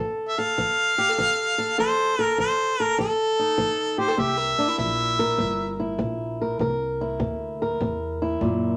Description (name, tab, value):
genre	acoustic country blues, solo or duo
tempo	100 BPM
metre	4/4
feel	swing 67% on 8ths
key	C mixolydian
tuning	A4 = 440 Hz
part	fingerpicked swing-style acoustic guitar	accompaniment	0.0-8.8 s	Bb2 to Bb4	-28 LUFS	equal	none
part	bright harmonica	melody	0.3-5.8 s	A4 to F5	-25 LUFS	equal	none
part	kick drum	drums	0.6-8.6 s	none	-44 LUFS	equal	none
part	upright bass	bass	4.2-8.8 s	G1 to F#2	-34 LUFS	equal	none
room	moderate studio reverb, RT60 0.7 s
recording	none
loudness	-24 LUFS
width	mono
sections	0.0-8.8 A section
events	none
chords	0.0 F7; 4.2 C7